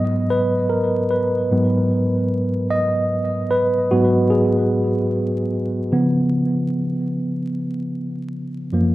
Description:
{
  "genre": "hip hop",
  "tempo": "75 BPM",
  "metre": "4/4",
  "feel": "swing 60% on 16ths",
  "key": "G# dorian",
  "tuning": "A4 = 440 Hz",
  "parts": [
    { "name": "tine electric piano", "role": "solo", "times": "0.0-8.9 s", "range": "F#2 to D#5", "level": "-17 LUFS", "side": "equal", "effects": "medium stereo tremolo, cassette tape, low-pass filter, tape echo" }
  ],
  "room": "light reverb",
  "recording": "rough home demo mix, vinyl crackle",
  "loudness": "-17 LUFS",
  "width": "side -16 dB against mid",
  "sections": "0.0-8.9 A section",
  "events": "tine electric piano solo 0.0-8.9",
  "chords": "0.0 G#m7; 5.9 C#7",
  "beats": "0.31 1.11 1.91 | 2.71 3.51 4.31 5.11 | 5.91 6.71 7.51 8.31"
}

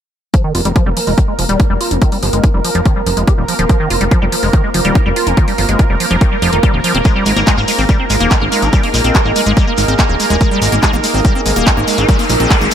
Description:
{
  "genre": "psychedelic trance",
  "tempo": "143 BPM",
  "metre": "4/4",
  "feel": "straight",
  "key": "F minor",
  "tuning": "A4 = 440 Hz",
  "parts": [
    { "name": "bubbling stepped-filter texture", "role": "sustained chords", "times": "0.3-12.7 s", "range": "Bb3 to Bb4", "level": "-19 LUFS", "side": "right 2 dB", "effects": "chorus, built-in reverb, sidechain pumping" },
    { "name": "liquid acid bass", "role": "riff", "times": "0.3-12.7 s", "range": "Eb3 to G4", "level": "-18 LUFS", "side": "left 1 dB", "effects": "chorus, auto-pan, sidechain pumping, ping-pong delay" },
    { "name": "drum and bass drum kit", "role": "drums", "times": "0.3-12.7 s", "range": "handclaps, hi-hat", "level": "-19 LUFS", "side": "equal", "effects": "none" },
    { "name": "electronic kick drum", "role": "drums", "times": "0.3-12.6 s", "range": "none", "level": "-12 LUFS", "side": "equal", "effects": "overdrive" },
    { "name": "warbly tape-like pad", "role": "texture", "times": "1.3-12.7 s", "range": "C4 to Ab5", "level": "-25 LUFS", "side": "right 2 dB", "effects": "chorus, built-in reverb, sidechain pumping" },
    { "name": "fat analog bass", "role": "bass", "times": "0.5-12.7 s", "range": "Eb1 to Bb1", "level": "-16 LUFS", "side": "equal", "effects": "none" },
    { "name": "shekere", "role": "percussion", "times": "7.0-12.7 s", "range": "none", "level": "-24 LUFS", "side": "left 3 dB", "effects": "none" },
    { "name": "vowel-sweep wobble bass", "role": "second line", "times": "8.4-8.5 s", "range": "C4", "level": "-32 LUFS", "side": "right 6 dB", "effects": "none" },
    { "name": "riser", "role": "sound effects", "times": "11.3-12.7 s", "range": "none", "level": "-22 LUFS", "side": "left 1 dB", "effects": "none" }
  ],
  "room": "light reverb, digital ambience",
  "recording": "none",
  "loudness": "-10 LUFS",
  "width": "side -9 dB against mid",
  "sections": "0.3-12.7 A section",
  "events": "fade-in on ambient pad 0.3-12.7; filter sweep on acid bass 0.3-12.7; riser 11.3-12.7",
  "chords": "0.3 F5",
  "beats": "| 0.34 0.76 1.18 1.60 | 2.02 2.44 2.85 3.27 | 3.69 4.11 4.53 4.95 | 5.37 5.79 6.21 6.63 | 7.05 7.47 7.89 8.31 | 8.73 9.15 9.57 9.99 | 10.41 10.83 11.25 11.67 | 12.09 12.51"
}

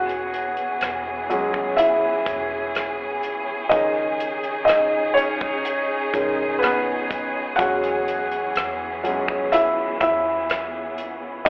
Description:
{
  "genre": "pop ballad",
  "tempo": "62 BPM",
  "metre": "4/4",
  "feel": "straight",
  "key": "E major",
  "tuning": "A4 = 441 Hz",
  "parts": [
    { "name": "felt-muted upright piano", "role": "accompaniment", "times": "0.0-11.5 s", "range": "D#3 to F#5", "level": "-24 LUFS", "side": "equal", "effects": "plate reverb, slapback echo" },
    { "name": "warm studio string section", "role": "sustained chords", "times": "0.0-11.5 s", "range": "C#3 to G#4", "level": "-29 LUFS", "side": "equal", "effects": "plate reverb" },
    { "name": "vintage muted fingered electric bass", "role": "bass", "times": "0.0-11.5 s", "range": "E1 to E2", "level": "-50 LUFS", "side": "equal", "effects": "none" },
    { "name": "damped 70s drum kit", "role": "drums", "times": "0.1-11.5 s", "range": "hi-hat, kick drum, rim click", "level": "-29 LUFS", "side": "equal", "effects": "none" }
  ],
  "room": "moderate club reverb, RT60 0.5 s",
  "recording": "live gig heard through the venue's PA, club reverb, telephone sound",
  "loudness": "-22 LUFS",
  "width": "mono",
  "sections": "0.0-11.5 A section",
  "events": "felt piano solo 0.0-11.5",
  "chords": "0.0 E6; 3.7 C#sus2; 7.6 E6",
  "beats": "0.81 1.78 2.75 | 3.72 4.68 5.65 6.62 | 7.59 8.56 9.52 10.49 | 11.46"
}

